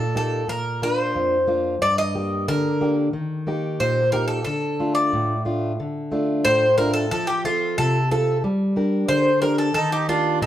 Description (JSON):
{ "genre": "greek folk", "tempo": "91 BPM", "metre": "2/4", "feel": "straight", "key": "D phrygian", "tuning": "A4 = 440 Hz", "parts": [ { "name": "Greek bouzouki", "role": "melody", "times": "0.0-10.5 s", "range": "F4 to Eb5", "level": "-21 LUFS", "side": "equal", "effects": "none" }, { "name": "fingerpicked plugged-in steel-string acoustic guitar", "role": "accompaniment", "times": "0.0-10.5 s", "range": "F2 to Bb4", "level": "-22 LUFS", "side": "equal", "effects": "none" }, { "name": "accordion", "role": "second line", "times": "9.8-10.5 s", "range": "D4 to Eb4", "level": "-23 LUFS", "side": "right 7 dB", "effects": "none" } ], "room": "moderate large studio reverb, RT60 1.1 s", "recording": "band playing live in one room", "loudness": "-19 LUFS", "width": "side -12 dB against mid", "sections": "0.0-5.8 A section; 5.8-10.5 A section", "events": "none", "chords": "0.5 Bb; 1.8 Gm; 3.1 Eb; 4.5 Dm; 7.1 F; 8.4 Gm; 9.8 Eb" }